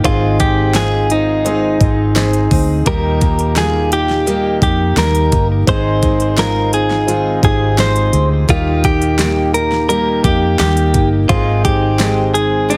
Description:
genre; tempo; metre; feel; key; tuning
piano-driven pop; 85 BPM; 4/4; straight; unclear; A4 = 441 Hz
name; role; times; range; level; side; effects
warm concert grand piano; accompaniment; 0.0-12.8 s; Ab2 to Ab4; -21 LUFS; equal; none
picked steel-string acoustic guitar; riff; 0.0-12.8 s; Ab2 to Ab4; -25 LUFS; equal; none
vintage muted fingered electric bass; bass; 0.0-12.8 s; G1 to F2; -20 LUFS; equal; none
pop drum kit; drums; 0.0-12.8 s; handclaps, hi-hat, kick drum, snare drum; -20 LUFS; equal; none
direct-recorded clean electric guitar; melody; 0.1-12.8 s; Eb4 to C5; -20 LUFS; equal; delay
room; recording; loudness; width
light reverb; heavily compressed radio sound, multiband compression; -14 LUFS; mono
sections
0.0-12.8 A section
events
none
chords
0.0 Ab; 2.9 Eb; 5.7 Ab; 8.5 Eb; 11.3 Ab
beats
| 0.04 0.75 1.45 2.15 | 2.86 3.56 4.26 4.97 | 5.67 6.37 7.08 7.78 | 8.48 9.19 9.89 10.59 | 11.29 12.00 12.70

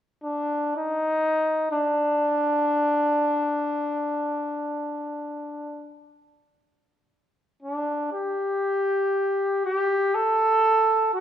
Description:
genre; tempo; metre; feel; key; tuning
japanese traditional; free time; none; none; unclear; A4 = 441 Hz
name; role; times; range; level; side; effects
mellow trumpet; melody; 0.2-11.2 s; D4 to A4; -22 LUFS; equal; none
room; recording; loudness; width
moderate scoring stage reverb, RT60 1.8 s; minimal, uncompressed stereo recording; -22 LUFS; side -10 dB against mid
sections
0.0-8.2 A section; 8.2-11.2 B section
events
none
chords
none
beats
free time

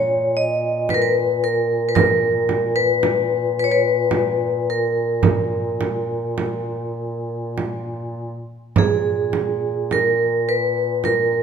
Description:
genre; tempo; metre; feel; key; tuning
caucasian folk, Caucasian lament; 49-57 BPM; 3/4; rubato; Bb phrygian; A4 = 439 Hz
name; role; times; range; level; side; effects
vibraphone with medium hard mallets; melody; 0.0-11.4 s; Ab4 to Eb5; -19 LUFS; equal; none
dark duduk; drone; 0.0-11.4 s; Bb2; -27 LUFS; equal; none
frame drum; percussion; 0.9-11.3 s; none; -22 LUFS; right 5 dB; none
room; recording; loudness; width
moderate recital hall reverb, RT60 1.7 s; minimal, uncompressed stereo recording; -18 LUFS; side -7 dB against mid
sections
0.0-8.8 A section; 8.8-11.4 B section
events
none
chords
none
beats
0.89 | 1.95 3.03 4.12 | 5.24 6.38 7.57 | 8.76 9.91 11.04

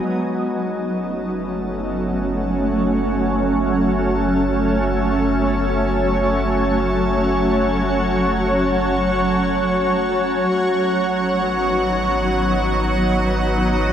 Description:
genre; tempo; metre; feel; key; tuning
ambient; free time; none; none; F# dorian; A4 = 440 Hz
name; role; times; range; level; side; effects
shimmering ambient pad; sustained chords; 0.0-13.9 s; F#3 to D#5; -18 LUFS; equal; chorus, built-in reverb
Celtic harp; arpeggios; 0.0-13.9 s; F#3 to C#5; -30 LUFS; left 2 dB; none
round analog bass; bass; 0.0-13.9 s; F#1 to G#1; -26 LUFS; equal; none
clear chamber violin section; texture; 0.1-13.9 s; F#5 to A5; -34 LUFS; equal; none
room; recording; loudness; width
wet cathedral reverb, RT60 5.5 s; none; -17 LUFS; side -9 dB against mid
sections
0.1-13.9 A section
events
fade-in on violin section 0.1-13.9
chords
0.1 F#m; 10.5 G#m7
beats
free time

